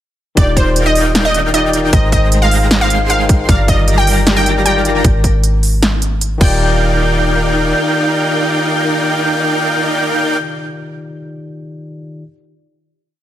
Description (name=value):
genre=future bass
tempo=154 BPM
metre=4/4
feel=half-time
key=Eb major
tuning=A4 = 440 Hz
part: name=wide unison pluck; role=melody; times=0.4-10.4 s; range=C5 to G5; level=-17 LUFS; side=right 1 dB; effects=sidechain pumping, digital delay
part: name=overdriven tine electric piano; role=accompaniment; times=0.4-12.2 s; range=Eb3 to G5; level=-21 LUFS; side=left 2 dB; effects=vintage 12-bit sampler grit, sidechain pumping, digital delay
part: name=airy dreamy lead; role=arpeggios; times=0.4-10.4 s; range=G6 to C7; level=-21 LUFS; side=equal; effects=chorus, sidechain pumping, digital delay
part: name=dense compressed supersaw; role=riff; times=0.4-10.4 s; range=G3 to C6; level=-18 LUFS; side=right 1 dB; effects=sidechain pumping, digital delay
part: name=warm 808-style bass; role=bass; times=0.4-7.7 s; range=Eb1 to Ab1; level=-15 LUFS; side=equal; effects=sidechain pumping
part: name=big-room dance drum kit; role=drums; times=0.4-6.5 s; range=crash cymbal, hi-hat, snare drum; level=-17 LUFS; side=right 1 dB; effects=overdrive
part: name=electronic kick drum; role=drums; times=0.4-6.5 s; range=none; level=-12 LUFS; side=equal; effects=overdrive
part: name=concert harp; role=arpeggios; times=3.5-8.3 s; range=D4 to D5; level=-26 LUFS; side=left 7 dB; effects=sidechain pumping, digital delay
room=light reverb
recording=none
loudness=-11 LUFS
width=side -12 dB against mid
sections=0.4-6.6 drop; 6.6-9.7 final hit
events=drop 0.4-6.6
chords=0.4 Ebmaj7; 1.9 Abmaj7; 3.5 Ebmaj7/G; 5.0 N.C.; 6.4 Ebmaj7